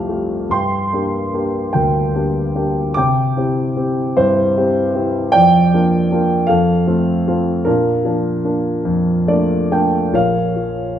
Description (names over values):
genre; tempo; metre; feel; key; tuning
classical, lyrical solo piano; 47-52 BPM (dotted quarters); 6/8; rubato; Bb major; A4 = 440 Hz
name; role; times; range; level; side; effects
dark grand piano; solo; 0.0-11.0 s; Bb1 to D6; -14 LUFS; equal; none
room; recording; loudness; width
moderate concert hall reverb, RT60 1.9 s; minimal, uncompressed stereo recording; -14 LUFS; side -10 dB against mid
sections
0.0-10.1 A section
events
grand piano fill 8.9-10.1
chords
0.0 Fadd9; 0.5 Gm; 3.0 C; 5.3 Bb/F; 6.5 F; 7.7 Bbmaj7; 10.1 Bbm